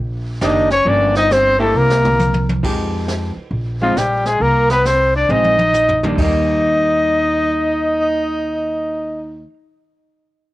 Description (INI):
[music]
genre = jazz, small-group swing and bop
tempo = 135 BPM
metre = 4/4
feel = swing 65% on 8ths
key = Eb major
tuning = A4 = 441 Hz
[part]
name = upright bass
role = bass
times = 0.0-9.4 s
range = Gb1 to F2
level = -21 LUFS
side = equal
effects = none
[part]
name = warm trumpet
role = melody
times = 0.4-9.4 s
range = F4 to Eb5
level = -16 LUFS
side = left 1 dB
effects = none
[part]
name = clear tenor saxophone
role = second line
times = 0.4-9.4 s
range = F3 to Eb4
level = -20 LUFS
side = right 1 dB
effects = cassette tape, plate reverb
[part]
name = vintage hollow-body jazz guitar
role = accompaniment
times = 0.4-9.5 s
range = Eb3 to G4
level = -22 LUFS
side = equal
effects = cassette tape, plate reverb
[part]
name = jazz brush drum kit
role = drums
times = 0.4-6.3 s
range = brushed snare drum, crash cymbal, hi-hat, kick drum, snare drum, toms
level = -24 LUFS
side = right 1 dB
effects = none
[sound]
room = moderate booth ambience, RT60 0.3 s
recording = home recording on cassette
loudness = -14 LUFS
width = side -17 dB against mid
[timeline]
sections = 0.0-2.6 A section; 2.6-6.2 B section; 6.2-9.7 C section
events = drum fill 1.7-2.6, 5.3-6.2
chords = 0.0 Ebmaj7; 0.9 Gm7b5; 1.7 C7; 2.6 Fm9; 3.5 Bb9sus4; 4.4 Bbadd9/C; 5.3 Bb9sus4; 6.2 Eb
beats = 0.42 | 0.86 1.30 1.75 2.19 | 2.63 3.08 3.52 3.96 | 4.41 4.85 5.29 5.74 | 6.18 6.63 7.07 7.51 | 7.96 8.40 8.85 9.29